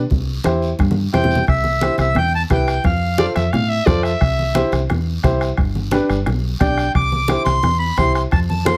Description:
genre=latin, cumbia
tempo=175 BPM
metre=4/4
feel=straight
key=C major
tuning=A4 = 440 Hz
part: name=fingered electric bass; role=bass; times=0.0-8.7 s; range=G1 to A2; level=-22 LUFS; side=equal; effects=none
part: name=bombo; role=percussion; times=0.1-8.8 s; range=none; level=-23 LUFS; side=equal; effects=none
part: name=congas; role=percussion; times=0.1-8.8 s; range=none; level=-27 LUFS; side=equal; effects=none
part: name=guiro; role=percussion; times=0.1-8.8 s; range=none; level=-39 LUFS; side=equal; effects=none
part: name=warm upright piano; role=accompaniment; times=0.4-8.8 s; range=D4 to D5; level=-23 LUFS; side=equal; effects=none
part: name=accordion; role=melody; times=1.1-3.3, 6.6-8.8 s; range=E5 to D6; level=-22 LUFS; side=equal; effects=none
part: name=growling trumpet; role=second line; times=3.2-4.7 s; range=D5 to F5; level=-24 LUFS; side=equal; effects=none
room=light reverb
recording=none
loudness=-18 LUFS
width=mono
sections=0.0-1.5 A section; 1.5-8.8 B section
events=drum fill 0.8-1.5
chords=0.1 C; 2.8 F; 4.2 C; 5.6 G; 7.0 C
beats=| 0.11 0.45 0.79 1.13 | 1.48 1.82 2.16 2.50 | 2.85 3.19 3.53 3.87 | 4.21 4.56 4.90 5.24 | 5.58 5.92 6.27 6.61 | 6.95 7.29 7.63 7.98 | 8.32 8.66

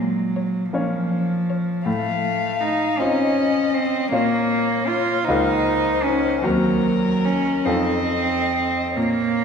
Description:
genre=classical, slow romantic movement for piano trio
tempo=45-54 BPM (dotted quarters)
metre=6/8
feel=rubato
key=unclear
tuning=A4 = 439 Hz
part: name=rich cello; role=second line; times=0.0-9.4 s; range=F3 to F4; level=-21 LUFS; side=right 2 dB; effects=none
part: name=clear grand piano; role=accompaniment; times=0.0-9.4 s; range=Db2 to Eb5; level=-24 LUFS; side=left 2 dB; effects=none
part: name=dark violin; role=melody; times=0.4-9.4 s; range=Bb4 to F5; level=-26 LUFS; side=left 7 dB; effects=none
room=wet concert hall reverb, RT60 2.3 s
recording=heard from further back in the room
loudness=-18 LUFS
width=side -6 dB against mid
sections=0.0-9.4 A section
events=none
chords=0.0 Bbm; 1.9 F7/A; 4.1 Bbm; 5.3 Bbm/Db; 6.4 Cm7b5/Eb; 7.7 F7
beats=0.74 | 1.87 3.00 | 4.13 5.28 | 6.43 7.66 | 8.96

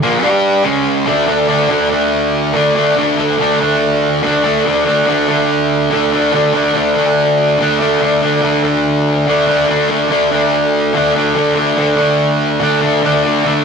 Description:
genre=rock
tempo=143 BPM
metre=4/4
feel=straight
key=unclear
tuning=A4 = 441 Hz
part: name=fuzz guitar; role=solo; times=0.0-13.6 s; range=Bb2 to G4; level=-11 LUFS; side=equal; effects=distortion
room=wet studio reverb, RT60 0.7 s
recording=rough rehearsal-room recording, tube saturation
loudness=-11 LUFS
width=side -6 dB against mid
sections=0.0-1.3 A section; 1.3-13.6 B section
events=none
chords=0.0 G5; 0.7 C#5; 1.1 D5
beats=0.03 0.45 0.86 | 1.28 1.70 2.12 2.54 | 2.96 3.39 3.81 4.23 | 4.65 5.07 5.50 5.92 | 6.34 6.76 7.18 7.60 | 8.02 8.44 8.86 9.27 | 9.69 10.11 10.53 10.95 | 11.36 11.78 12.20 12.62 | 13.04 13.45

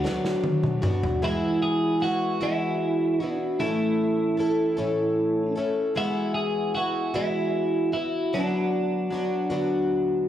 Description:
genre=folk rock and heartland rock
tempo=51 BPM (dotted quarters)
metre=6/8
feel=straight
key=unclear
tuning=A4 = 440 Hz
part: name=twelve-string electric guitar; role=melody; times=0.0-10.3 s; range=D4 to D5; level=-28 LUFS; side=right 3 dB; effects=slapback echo, tape echo
part: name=picked plugged-in twelve-string acoustic guitar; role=accompaniment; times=0.0-10.3 s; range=A2 to A4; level=-25 LUFS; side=left 1 dB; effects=slapback echo
part: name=natural country drum kit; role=drums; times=0.1-1.2 s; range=snare drum, toms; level=-26 LUFS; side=equal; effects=none
room=light reverb, small room reverb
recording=live gig heard through the venue's PA, club reverb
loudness=-23 LUFS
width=side -11 dB against mid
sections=0.0-1.2 A section; 1.2-10.3 A section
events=drum fill 0.0-1.2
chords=0.0 Bm/D; 1.2 Eadd9; 3.6 A; 6.0 Eadd9; 8.3 Bm/D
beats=0.05 | 1.23 2.41 | 3.59 4.78 | 5.96 7.13 | 8.31 9.49

